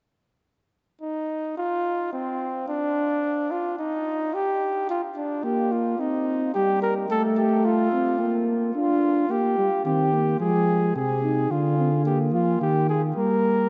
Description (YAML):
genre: classical, imitative canzona for brass ensemble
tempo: 109 BPM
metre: 4/4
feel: straight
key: Eb major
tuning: A4 = 440 Hz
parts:
  - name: mellow flugelhorn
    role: second line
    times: 1.0-13.7 s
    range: C4 to Bb4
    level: -27 LUFS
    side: equal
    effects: none
  - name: dark euphonium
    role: accompaniment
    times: 5.4-13.7 s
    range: G3 to Eb4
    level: -27 LUFS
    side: equal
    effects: none
  - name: mellow tuba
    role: bass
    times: 9.9-13.7 s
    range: C3 to G3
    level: -26 LUFS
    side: equal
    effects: none
room: wet cathedral reverb, RT60 6.3 s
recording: in a vast, echoing space, nothing above 7.9 kHz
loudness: -24 LUFS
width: mono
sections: 0.5-13.7 A section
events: none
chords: 0.5 N.C.; 4.9 Bb; 6.0 Cm; 7.1 F/A; 8.2 Bb; 9.3 Eb; 10.4 Fm; 11.5 Bb/D; 12.6 Eb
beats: | 0.46 1.01 1.57 2.13 | 2.68 3.24 3.79 4.34 | 4.89 5.45 6.00 6.55 | 7.10 7.65 8.20 8.75 | 9.30 9.85 10.40 10.95 | 11.51 12.06 12.61 13.17